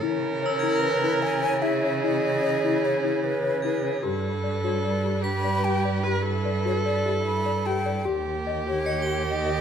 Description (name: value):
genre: contemporary instrumental, chamber music in an uneven meter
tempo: 149 BPM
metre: 5/4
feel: straight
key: unclear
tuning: A4 = 435 Hz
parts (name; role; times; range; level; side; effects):
- clear viola; second line; 0.0-9.6 s; G4 to B4; -28 LUFS; right 3 dB; none
- warm studio string section; sustained chords; 0.0-9.6 s; D#3 to B4; -33 LUFS; equal; none
- small celesta; arpeggios; 0.0-9.6 s; E4 to D#5; -29 LUFS; left 10 dB; none
- rich cello; bass; 0.0-9.6 s; D#2 to C#3; -28 LUFS; right 4 dB; none
- crotales; texture; 0.0-9.6 s; E6 to G7; -37 LUFS; left 4 dB; none
- breathy mellow silver concert flute; melody; 0.6-9.6 s; A#4 to B5; -30 LUFS; left 1 dB; none
room: moderate recital hall reverb, RT60 1.4 s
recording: none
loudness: -22 LUFS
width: side -8 dB against mid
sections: 0.0-9.6 A section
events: none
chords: 0.0 C#madd9; 4.0 G; 8.1 D#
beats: | 0.03 0.43 0.83 1.23 1.63 | 2.03 2.43 2.83 3.23 3.64 | 4.04 4.44 4.84 5.24 5.65 | 6.05 6.45 6.85 7.25 7.66 | 8.06 8.46 8.86 9.27